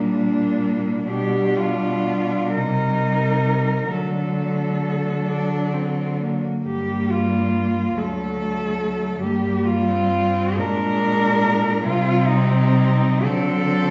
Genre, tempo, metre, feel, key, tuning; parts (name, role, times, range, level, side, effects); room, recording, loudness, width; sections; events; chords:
classical, lyrical piece for cello ensemble; 40-51 BPM (dotted quarters); 6/8; rubato; G minor; A4 = 437 Hz
warm cello; melody; 0.0-13.9 s; D4 to Bb4; -26 LUFS; equal
rich cello; second line; 0.0-13.9 s; A3 to Eb4; -28 LUFS; equal
rich cello; accompaniment; 0.0-13.9 s; F#3 to Ab3; -27 LUFS; equal
rich cello; bass; 0.0-13.9 s; D2 to D3; -26 LUFS; equal
wet recital hall reverb, RT60 1.3 s; heard from further back in the room, nothing above 7.8 kHz; -21 LUFS; mono
0.0-13.9 A section
0.0 Gm/Bb; 1.1 G7/B; 2.6 Cm; 3.9 D; 6.7 Gm; 8.0 D; 9.2 Gm; 10.6 Bb7; 11.9 Cm; 13.2 D7